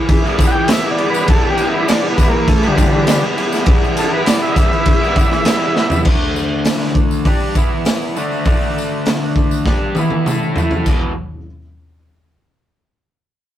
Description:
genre	garage rock duo or trio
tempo	100 BPM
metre	4/4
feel	straight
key	E minor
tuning	A4 = 440 Hz
part	raw garage guitar	riff	0.0-11.1 s	E2 to A4	-19 LUFS	equal	overdrive
part	raw garage drum kit	drums	0.1-11.0 s	crash cymbal, hi-hat, kick drum, snare drum, toms	-15 LUFS	equal	none
part	tambourine	percussion	0.1-11.1 s	none	-33 LUFS	left 4 dB	none
part	overdriven combo organ	melody	0.5-6.0 s	D3 to G5	-18 LUFS	equal	none
room	light reverb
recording	rough rehearsal-room recording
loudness	-13 LUFS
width	side -11 dB against mid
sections	0.0-6.1 A section; 6.1-10.9 B section; 10.9-13.3 C section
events	transistor combo organ solo 0.0-6.1; drum fill 5.8, 9.7-10.9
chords	0.0 Em; 6.1 D5; 7.6 E5; 8.2 D5; 10.9 E5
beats	0.10 0.69 | 1.29 1.89 2.48 3.08 | 3.67 4.27 4.87 5.46 | 6.06 6.66 7.26 7.86 | 8.46 9.06 9.66 10.27 | 10.87

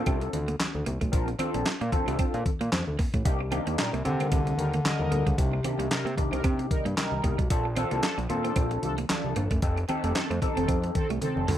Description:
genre	early-eighties boogie funk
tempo	113 BPM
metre	4/4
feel	swing 56% on 16ths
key	unclear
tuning	A4 = 440 Hz
part	overdriven tine electric piano	accompaniment	0.0-11.0 s	Bb3 to Bb4	-31 LUFS	left 1 dB	phaser
part	electric guitar at the edge of break-up	riff	0.0-11.6 s	G3 to C4	-34 LUFS	right 6 dB	analog chorus
part	fat analog bass	bass	0.0-11.6 s	F1 to C3	-30 LUFS	equal	none
part	clean 12-bit digital drum machine	drums	0.1-11.6 s	handclaps, hi-hat, kick drum, snare drum, toms	-28 LUFS	equal	none
part	congas	percussion	0.1-11.6 s	none	-39 LUFS	left 2 dB	none
part	dark bass clarinet	melody	3.8-7.2 s	Bb2 to D3	-30 LUFS	left 1 dB	none
part	mellow synth brass	second line	3.8-11.6 s	Eb3 to Eb5	-33 LUFS	equal	chorus, phaser
room	light reverb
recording	none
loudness	-25 LUFS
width	side -11 dB against mid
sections	0.0-11.6 A section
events	drum fill 11.2-11.6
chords	0.0 Bbmaj9; 3.3 Cm9; 7.5 Bbmaj9; 9.6 F9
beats	0.07 0.60 | 1.13 1.66 2.19 2.72 | 3.25 3.79 4.32 4.85 | 5.38 5.91 6.44 6.97 | 7.50 8.03 8.56 9.09 | 9.62 10.16 10.69 11.22

